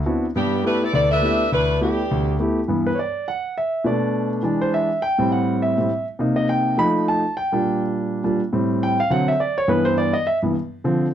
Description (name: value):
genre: jazz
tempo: 206 BPM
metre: 4/4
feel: swing 60% on 8ths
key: G major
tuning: A4 = 437 Hz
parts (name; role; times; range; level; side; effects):
- warm concert grand piano; accompaniment; 0.1-11.1 s; D2 to B5; -19 LUFS; equal; none
- warm saxophone section; melody; 0.4-2.4 s; E3 to E5; -20 LUFS; equal; none
room: moderate club reverb, RT60 0.6 s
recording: dark, warm production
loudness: -18 LUFS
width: side -10 dB against mid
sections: 0.0-2.7 A section; 2.7-11.1 B section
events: grand piano solo 2.7-11.1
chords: 0.3 G69; 2.7 G6; 3.8 Bm7; 4.4 Eaug7; 5.0 Am7; 6.2 Cm7; 6.8 F7; 7.3 Bb6; 8.5 Am7; 9.1 D7; 9.7 G6